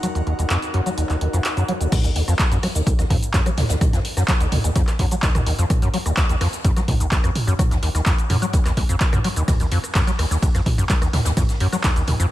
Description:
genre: acid house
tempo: 127 BPM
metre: 4/4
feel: straight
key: Eb minor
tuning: A4 = 440 Hz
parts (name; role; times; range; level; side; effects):
- deep acid bass; riff; 0.0-12.3 s; Eb2 to Gb3; -21 LUFS; equal; overdrive, analog chorus, sidechain pumping, tape echo
- punchy analog drum machine; drums; 0.0-12.3 s; cabasa, crash cymbal, handclaps, hi-hat, ride cymbal, rim click, toms; -24 LUFS; right 1 dB; none
- airy breathy pad; texture; 0.0-1.9 s; Eb4 to Gb5; -31 LUFS; equal; chorus, sidechain pumping
- electronic kick drum; drums; 1.9-11.9 s; none; -20 LUFS; equal; none
- open jazz drum kit; drums; 1.9-12.2 s; hi-hat, snare drum; -36 LUFS; left 2 dB; sidechain pumping on hats, high-pass filter on hats, high-pass filter on snare, high-pass filter on room
room: light reverb, digital ambience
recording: none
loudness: -17 LUFS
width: side -15 dB against mid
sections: 0.0-1.9 A section; 1.9-12.3 B section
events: filter sweep on drum 0.0-1.9; drop 1.9-12.3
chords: 0.0 Ebm

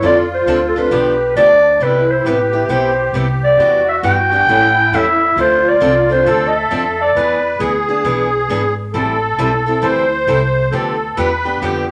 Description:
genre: acoustic string swing (jazz manouche)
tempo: 134 BPM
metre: 4/4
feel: swing 64% on 8ths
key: C major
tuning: A4 = 440 Hz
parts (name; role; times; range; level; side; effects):
- growling clarinet; melody; 0.0-7.6 s; A4 to G5; -15 LUFS; equal; none
- musette accordion; second line; 0.0-11.9 s; D4 to C5; -21 LUFS; equal; none
- picked steel-string acoustic guitar; accompaniment; 0.0-11.8 s; C3 to A4; -23 LUFS; equal; none
- upright bass; bass; 0.0-11.9 s; G#1 to A2; -25 LUFS; equal; none
room: wet large studio reverb, RT60 0.8 s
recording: none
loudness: -14 LUFS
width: mono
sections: 0.0-1.8 A section; 1.8-11.9 A section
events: none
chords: 0.0 Dm7; 0.9 G7; 1.8 Cmaj7; 3.6 Em7; 4.5 A7; 5.4 Dm7; 7.2 E7; 8.9 Am9; 10.7 G7

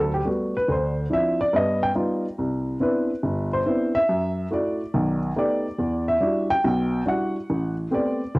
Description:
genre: solo jazz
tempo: 141 BPM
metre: 4/4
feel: swing 66% on 8ths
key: G major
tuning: A4 = 441 Hz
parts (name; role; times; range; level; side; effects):
- dark upright piano; solo; 0.0-8.4 s; G1 to G5; -21 LUFS; equal; none
room: light reverb, small room ambience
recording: home recording on cassette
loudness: -21 LUFS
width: side -23 dB against mid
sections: 0.0-8.4 A section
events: upright piano solo 0.0-8.4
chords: 0.0 Gmaj9; 0.7 Dm9; 1.5 Gaug7; 2.4 Cmaj9; 4.1 F#m7; 4.9 B7alt; 5.8 Em9; 7.5 Am9

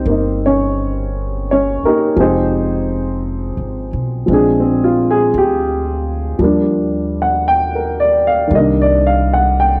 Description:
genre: jazz ballad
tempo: 57 BPM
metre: 4/4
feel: swing 68% on 8ths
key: Eb major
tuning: A4 = 440 Hz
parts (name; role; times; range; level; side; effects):
- warm baby grand piano; accompaniment; 0.0-9.8 s; Eb3 to G5; -16 LUFS; equal; cassette tape
- upright bass; bass; 0.1-9.8 s; F1 to Eb2; -23 LUFS; equal; none
room: light reverb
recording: home recording on cassette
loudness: -15 LUFS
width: mono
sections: 0.0-9.8 A section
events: none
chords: 0.0 Cm7; 2.2 Fm9; 4.3 Bb7; 6.4 Ebmaj7; 8.5 Cm9

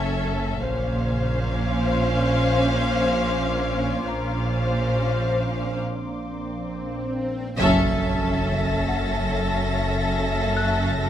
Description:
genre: cinematic, suspense film score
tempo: 70 BPM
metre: 4/4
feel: straight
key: unclear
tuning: A4 = 440 Hz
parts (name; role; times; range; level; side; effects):
- rich studio violin section; melody; 0.0-11.1 s; E5 to E#5; -29 LUFS; left 3 dB; none
- warm studio violin section; second line; 0.0-11.1 s; A4 to B#4; -27 LUFS; left 3 dB; none
- warm studio viola section; accompaniment; 0.0-11.1 s; C#4; -30 LUFS; right 2 dB; none
- warm studio cello section; bass; 0.0-11.1 s; F#2 to A#2; -29 LUFS; right 2 dB; none
- warm studio double bass section; bass; 0.0-11.1 s; F#1 to A#1; -27 LUFS; right 2 dB; none
- organ-like drone; drone; 0.0-11.1 s; F#1 to A#1; -30 LUFS; equal; ensemble chorus, built-in reverb
- small celesta; texture; 0.0-11.1 s; G4 to F#6; -35 LUFS; left 4 dB; none
- warm studio violin section; texture; 0.0-11.1 s; B#5 to A#6; -36 LUFS; left 2 dB; none
- swell and impact; sound effects; 5.9-11.0 s; none; -32 LUFS; equal; none
room: moderate scoring stage reverb, RT60 1.6 s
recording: none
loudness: -21 LUFS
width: side -10 dB against mid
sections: 0.0-7.6 A section; 7.6-11.1 A section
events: break 5.8-7.6; swell 5.9-7.6; band accent 7.6-8.5; impact 7.6-11.0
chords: 0.0 F#m7; 0.7 A#madd9; 7.6 F#m7

